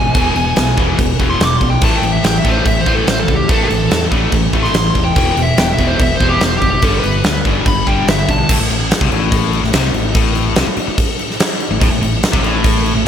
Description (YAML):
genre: hard rock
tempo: 144 BPM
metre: 4/4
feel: straight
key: unclear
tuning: A4 = 441 Hz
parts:
  - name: dark smooth lead guitar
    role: melody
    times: 0.0-8.5 s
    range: G4 to D6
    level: -18 LUFS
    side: equal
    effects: overdrive, slapback echo, analog delay
  - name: biting overdriven guitar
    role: riff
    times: 0.0-13.1 s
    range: E2 to A3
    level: -19 LUFS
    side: left 8 dB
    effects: none
  - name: scooped high-gain guitar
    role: riff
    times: 0.0-8.5, 11.8-13.1 s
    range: E2 to A3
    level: -21 LUFS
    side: right 9 dB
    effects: distortion, slapback echo
  - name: overdriven fingered electric bass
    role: bass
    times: 0.0-13.1 s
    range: E1 to E2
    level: -19 LUFS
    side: equal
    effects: none
  - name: huge arena drum kit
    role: drums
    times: 0.1-13.0 s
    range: crash cymbal, kick drum, snare drum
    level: -15 LUFS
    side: equal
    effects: none
room: light reverb, studio ambience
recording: none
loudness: -12 LUFS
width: side -9 dB against mid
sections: 0.0-8.5 A section; 8.5-13.1 B section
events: lead electric guitar solo 0.0-8.5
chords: 0.0 E; 1.8 A5; 5.2 E5; 6.8 G; 8.5 C5